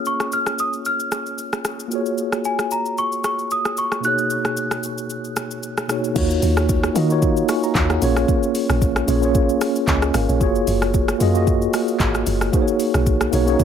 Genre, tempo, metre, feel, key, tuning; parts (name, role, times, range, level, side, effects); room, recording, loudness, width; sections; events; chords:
amapiano; 113 BPM; 4/4; swing 55% on 16ths; Eb minor; A4 = 440 Hz
celesta; melody; 0.0-4.8 s; Ab5 to F#6; -23 LUFS; equal; tape echo
mellow tine electric piano; accompaniment; 0.0-13.6 s; B2 to Db6; -21 LUFS; equal; medium stereo tremolo
afro-pop drum kit; drums; 0.1-13.6 s; crash cymbal, handclaps, hi-hat, kick drum, rim click, shaker; -23 LUFS; equal
deep log drum bass; bass; 6.2-13.6 s; Gb1 to Eb3; -21 LUFS; equal
digital ambience; -18 LUFS; side -8 dB against mid
0.0-6.2 A section; 6.2-13.6 B section
drop 6.2-13.6
0.0 Bbm7; 1.9 Gbmaj9; 4.0 Bmaj13; 6.2 Ebm7; 8.0 Bbm7; 10.4 Gbmaj9; 12.5 Bmaj13